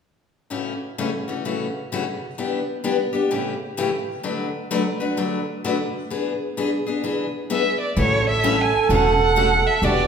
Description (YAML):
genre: acoustic string swing (jazz manouche)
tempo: 129 BPM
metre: 4/4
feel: swing 63% on 8ths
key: A major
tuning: A4 = 440 Hz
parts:
  - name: picked steel-string acoustic guitar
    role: accompaniment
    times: 0.5-10.0 s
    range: A2 to B4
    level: -23 LUFS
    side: left 3 dB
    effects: none
  - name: warm violin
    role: melody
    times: 7.5-10.1 s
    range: C#5 to G#5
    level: -20 LUFS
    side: right 2 dB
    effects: none
  - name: breathy flugelhorn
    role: second line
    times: 8.0-10.1 s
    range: F#4 to A4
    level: -20 LUFS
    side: right 6 dB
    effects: none
  - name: upright bass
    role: bass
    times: 8.0-10.1 s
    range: E1 to A1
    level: -23 LUFS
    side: equal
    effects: none
room: wet recital hall reverb, RT60 1.5 s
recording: recorded in a church or concert hall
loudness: -20 LUFS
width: side -7 dB against mid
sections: 0.5-8.0 A section; 8.0-10.1 B section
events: none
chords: 0.5 A6; 2.4 Em7; 3.3 A7; 4.2 D6; 6.1 E7; 8.0 A6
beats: | 0.51 0.98 1.44 1.91 | 2.38 2.84 3.31 3.78 | 4.24 4.71 5.18 5.64 | 6.11 6.58 7.04 7.51 | 7.97 8.44 8.90 9.37 | 9.83